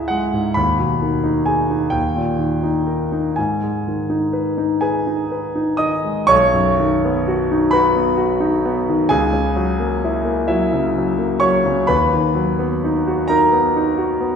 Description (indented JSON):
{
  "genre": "classical, romantic nocturne for solo piano",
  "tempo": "42 BPM (dotted quarters)",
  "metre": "6/8",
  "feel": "uneven beats, rubato",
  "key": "G# minor, B major from 6.3 s",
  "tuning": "A4 = 440 Hz",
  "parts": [
    { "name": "clear concert grand piano", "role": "solo", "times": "0.0-14.4 s", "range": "B1 to D#6", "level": "-16 LUFS", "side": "equal", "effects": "none" }
  ],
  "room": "wet scoring stage reverb, RT60 1.6 s",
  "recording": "heard from further back in the room",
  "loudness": "-16 LUFS",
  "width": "side -6 dB against mid",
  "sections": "0.0-6.3 A section; 6.3-14.4 B section",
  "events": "none",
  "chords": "0.0 C#m; 0.6 G#m/D#; 2.0 D#; 3.4 G#m; 6.3 B; 9.1 F#7/C#; 11.9 B/D#"
}